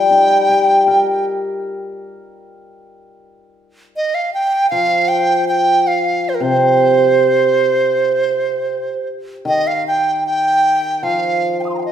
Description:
chinese traditional; 77 BPM; 4/4; rubato; C yu mode; A4 = 440 Hz
bright reedy large dizi; melody; 0.0-11.9 s; Bb4 to Eb6; -15 LUFS; right 2 dB
hammered dulcimer; accompaniment; 0.0-11.9 s; C3 to Bb4; -18 LUFS; left 2 dB
wet recital hall reverb, RT60 1.6 s; recorded in a church or concert hall; -13 LUFS; side -9 dB against mid
0.0-9.5 A section; 9.5-11.9 B section

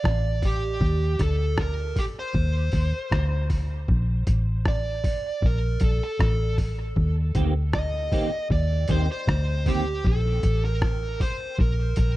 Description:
dub reggae; 78 BPM; 4/4; straight; Bb major; A4 = 439 Hz
dark smooth lead guitar; melody; 0.0-12.2 s; G4 to Eb5; -30 LUFS; right 2 dB; overdrive, dub echo
vintage muted fingered electric bass; bass; 0.0-12.2 s; A1 to Eb2; -24 LUFS; equal
trip hop sampler-style drum kit; drums; 0.0-12.2 s; hi-hat, kick drum, rim click; -26 LUFS; equal
clean electric guitar; accompaniment; 7.3-9.8 s; Eb3 to G4; -32 LUFS; right 3 dB; ensemble chorus, dub echo
little or no reverb; dry, close 1970s-style studio recording; -22 LUFS; side -17 dB against mid
0.0-12.2 A section
break 0.0-7.0
0.0 Bbmaj7 (rootless); 0.8 Cmadd9/D; 3.9 Bbmaj7; 7.0 Eb6; 10.0 Gmadd9/A (rootless)

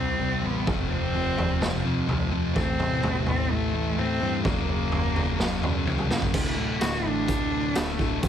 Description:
quiet-loud alternative rock; 127 BPM; 4/4; straight; D mixolydian; A4 = 438 Hz
rich cello; melody; 0.0-8.3 s; A3 to F#4; -30 LUFS; equal; analog delay
thick fuzz guitar; riff; 0.0-8.3 s; D2 to C4; -30 LUFS; left 11 dB; distortion
thick fuzz guitar; riff; 0.0-8.3 s; D2 to C4; -33 LUFS; right 12 dB; distortion
growling picked electric bass; bass; 0.0-8.3 s; D1 to A2; -32 LUFS; right 1 dB; overdrive
raw garage drum kit; drums; 0.7-8.3 s; crash cymbal, hi-hat, kick drum, snare drum, toms; -27 LUFS; right 1 dB
electric guitar through a small old amp; arpeggios; 6.3-8.3 s; D2 to F#3; -35 LUFS; right 6 dB; wide subtle chorus, analog delay
light reverb; -23 LUFS; side -9 dB against mid
0.0-6.3 A section; 6.3-8.3 B section
half time 0.0-6.3; drum fill 5.9-6.3; cello solo 6.3-8.3
0.0 C5; 0.7 F5; 2.6 Am; 4.5 F#; 6.3 D5

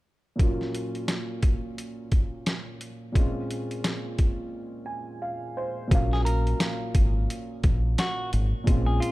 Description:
hip hop, boom-bap hip-hop; 87 BPM; 4/4; swing 60% on 16ths; A4 = 437 Hz
dark baby grand piano; accompaniment; 0.4-9.1 s; Bb2 to Ab5; -32 LUFS; equal; cassette tape, high-pass filter, low-pass filter
boom bap sampler-style drum kit; drums; 0.4-9.1 s; hi-hat, kick drum, snare drum; -24 LUFS; equal
deep dub fingered electric bass; bass; 5.9-9.0 s; Ab1 to Bb1; -25 LUFS; equal
semi-hollow electric guitar; melody; 6.1-9.1 s; F4 to Bb4; -32 LUFS; equal; high-pass filter, low-pass filter
little or no reverb; dark, warm production; -24 LUFS; side -19 dB against mid
0.4-5.9 A section; 5.9-9.1 B section
break 4.5-5.9; grand piano fill 4.5-5.9
0.4 Gbmaj7/Bb; 3.2 Bbm7; 5.9 Ab13sus4

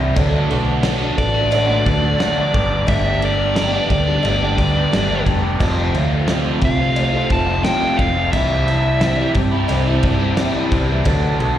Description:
classic rock; 88 BPM; 4/4; straight; G mixolydian; A4 = 439 Hz
picked old ladder-braced acoustic guitar; accompaniment; 0.0-11.6 s; G2 to A4; -26 LUFS; left 1 dB; slapback echo
tonewheel organ; sustained chords; 0.0-11.6 s; D4 to D5; -33 LUFS; equal; slow rotary speaker, overdrive, chorus vibrato
crunchy overdriven guitar; riff; 0.0-11.6 s; F2 to G4; -21 LUFS; equal; phaser, slapback echo
hollow-body short-scale fingered electric bass; bass; 0.0-11.6 s; F1 to G2; -20 LUFS; equal
cloth-damped thuddy drum kit; drums; 0.2-11.6 s; crash cymbal, kick drum, snare drum; -22 LUFS; equal
cowbell; percussion; 0.2-11.2 s; -31 LUFS; left 3 dB
dark smooth lead guitar; melody; 1.2-9.3 s; D5 to A5; -22 LUFS; equal; overdrive, digital delay
little or no reverb; live gig heard through the venue's PA, recital hall reverb; -15 LUFS; side -11 dB against mid
0.0-11.6 A section
0.2 D6; 2.5 Gadd9; 5.6 Fadd9; 8.3 Cadd9; 11.1 D6

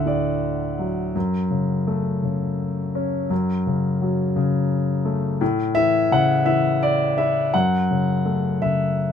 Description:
classical, lyrical solo piano; 56 BPM (dotted quarters); 6/8; rubato; F# minor; A4 = 440 Hz
warm concert grand piano; solo; 0.0-9.1 s; D2 to F#5; -19 LUFS; left 2 dB
little or no reverb; close, detailed microphones; -19 LUFS; side -8 dB against mid
0.0-9.1 A section
0.0 D; 1.2 F#m; 5.4 A; 7.5 F#m7

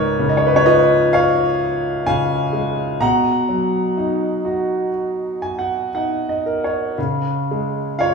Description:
classical, lyrical solo piano; 57-65 BPM; 4/4; rubato; A4 = 440 Hz
warm concert grand piano; solo; 0.0-8.1 s; C#2 to A#5; -16 LUFS; equal
wet recital hall reverb, RT60 1.6 s; recorded in a church or concert hall, small room ambience; -16 LUFS; side -4 dB against mid
0.0-8.1 A section
grand piano fill 4.9-7.0
0.0 C#7; 3.0 Bmaj7; 7.0 C#

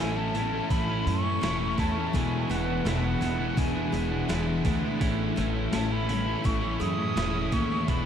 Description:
rock, shoegaze and dream pop; 84 BPM; 4/4; straight; A4 = 441 Hz
silver concert flute; melody; 0.0-8.1 s; E5 to D#6; -34 LUFS; equal; ping-pong delay
picked twelve-string acoustic guitar; arpeggios; 0.0-8.1 s; E3 to G#4; -37 LUFS; right 6 dB; analog chorus, ping-pong delay
biting overdriven guitar; riff; 0.0-8.1 s; E2 to E4; -34 LUFS; right 6 dB; reverse reverb
distorted electric guitar; riff; 0.0-8.1 s; A2 to E4; -35 LUFS; left 1 dB; distortion
thick fuzz guitar; riff; 0.0-8.1 s; E2 to A3; -31 LUFS; left 6 dB; distortion, lush chorus
upright bass; bass; 0.0-8.1 s; E1 to F#2; -31 LUFS; equal
gated 80s digital drum machine; drums; 0.3-8.0 s; hi-hat, kick drum, snare drum; -32 LUFS; equal; gated reverb, gated reverb snare
wet huge ambient reverb, RT60 7.5 s; dreamy mix soaked in reverb; -25 LUFS; side -8 dB against mid
0.0-8.1 A section
0.0 A; 2.1 E7; 5.0 Amaj7

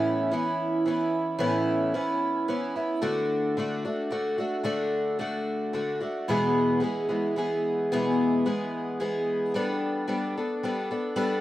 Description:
rock; 110 BPM; 3/4; straight; A major; A4 = 440 Hz
picked twelve-string acoustic guitar; solo; 0.0-11.4 s; E2 to A4; -25 LUFS; equal; slapback echo
little or no reverb; recorded outdoors, with no room sound; -25 LUFS; side -14 dB against mid
0.0-11.4 A section
0.0 Aadd9; 3.0 D; 6.3 E; 9.5 Gadd9

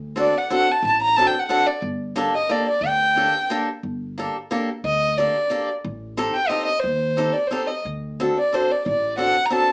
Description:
musette waltz; 180 BPM; 3/4; straight; G harmonic minor; A4 = 440 Hz
upright bass; bass; 0.0-9.3 s; G1 to Eb2; -30 LUFS; equal
dark violin; melody; 0.2-9.7 s; C5 to Bb5; -19 LUFS; equal
picked swing-style acoustic guitar; accompaniment; 0.2-9.7 s; Bb3 to A4; -23 LUFS; equal
wet studio reverb, RT60 0.5 s; heard from further back in the room, small speaker sound; -19 LUFS; side -28 dB against mid
0.0-3.8 A section; 3.8-9.7 A section
0.0 D7; 1.8 Gmadd9; 5.8 Am7b5; 7.9 D7

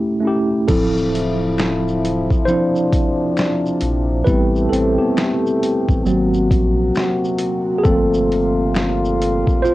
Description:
lo-fi hip hop; 67 BPM; 4/4; swing 64% on 16ths; D minor; A4 = 440 Hz
mellow tine electric piano; accompaniment; 0.0-9.7 s; F3 to C5; -18 LUFS; right 1 dB; medium stereo tremolo, cassette tape
dark brass ensemble; sustained chords; 0.7-9.7 s; A#2 to A4; -21 LUFS; left 2 dB; cassette tape
warm sub bass; bass; 0.7-9.4 s; D1 to Bb1; -22 LUFS; equal
boom bap sampler-style drum kit; drums; 0.7-9.7 s; crash cymbal, hi-hat, kick drum, shaker, snare drum; -20 LUFS; equal; cassette tape
finger snaps; percussion; 1.6-9.0 s; -33 LUFS; left 4 dB
light reverb; home recording on cassette; -15 LUFS; side -17 dB against mid
0.7-9.7 A section
tine electric piano solo 0.7-9.7
0.0 A7; 0.7 Dm9; 4.3 Am7; 6.1 G#9; 7.8 Gm11

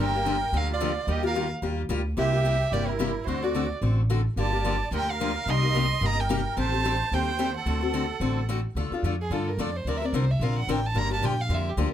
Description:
acoustic string swing (jazz manouche); 219 BPM; 4/4; swing 57% on 8ths; G minor, D minor from 8.8 s; A4 = 441 Hz
dark violin; melody; 0.0-11.9 s; G4 to C6; -29 LUFS; right 2 dB
musette accordion; second line; 0.0-8.5 s; E4 to Eb5; -34 LUFS; right 10 dB; slapback echo
picked steel-string acoustic guitar; accompaniment; 0.0-11.9 s; C3 to Bb4; -29 LUFS; left 5 dB
upright bass; bass; 0.0-11.9 s; G1 to G2; -27 LUFS; equal
little or no reverb; close, detailed microphones; -24 LUFS; side -10 dB against mid
0.0-8.8 A section; 8.8-11.9 B section
violin solo 8.8-11.9
0.0 Gm7; 1.1 Ebadd9; 2.2 C7; 3.3 D7; 4.4 Gm7; 5.5 Cm7; 6.6 Am7b5; 7.7 D7; 8.8 Dm; 9.9 Bbadd9; 11.0 Gm7

